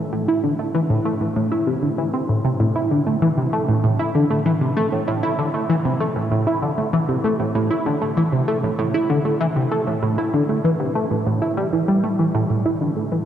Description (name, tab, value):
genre	ambient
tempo	97 BPM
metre	4/4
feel	straight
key	A minor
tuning	A4 = 440 Hz
part	tight sequenced synth	solo	0.0-13.2 s	A2 to E4	-18 LUFS	equal	chorus, phaser, analog delay
room	wet cathedral reverb, RT60 5.2 s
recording	in a vast, echoing space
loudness	-18 LUFS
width	side -10 dB against mid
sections	0.0-13.3 A section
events	none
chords	none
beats	| 0.13 0.75 1.36 1.98 | 2.60 3.22 3.84 4.46 | 5.08 5.70 6.31 6.93 | 7.55 8.17 8.79 9.41 | 10.02 10.64 11.26 11.88 | 12.50 13.12